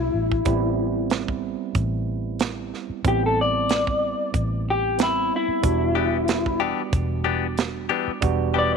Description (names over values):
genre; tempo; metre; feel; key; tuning
straight-eighth soul blues; 93 BPM; 4/4; swing 56% on 16ths; unclear; A4 = 441 Hz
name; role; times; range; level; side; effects
electric guitar through a small old amp; melody; 0.0-8.7 s; E4 to D5; -23 LUFS; left 4 dB; slapback echo
overdriven tine electric piano; accompaniment; 0.0-8.8 s; G3 to F#4; -28 LUFS; right 13 dB; wide subtle chorus
vintage muted fingered electric bass; bass; 0.0-8.8 s; E1 to B1; -27 LUFS; left 1 dB; none
tight funk drum kit; drums; 0.3-8.4 s; hi-hat, kick drum, snare drum; -24 LUFS; right 3 dB; none
direct-recorded clean electric guitar; stabs; 6.0-8.8 s; E3 to G4; -26 LUFS; left 13 dB; phaser
room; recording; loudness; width
light reverb, small room ambience; 1960s-style stereo with parts hard left and right; -21 LUFS; side -6 dB against mid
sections
0.0-8.8 A section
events
none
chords
0.5 Am7; 5.6 Em7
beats
| 0.46 1.10 1.75 2.40 | 3.04 3.69 4.34 4.99 | 5.63 6.28 6.93 7.57 | 8.22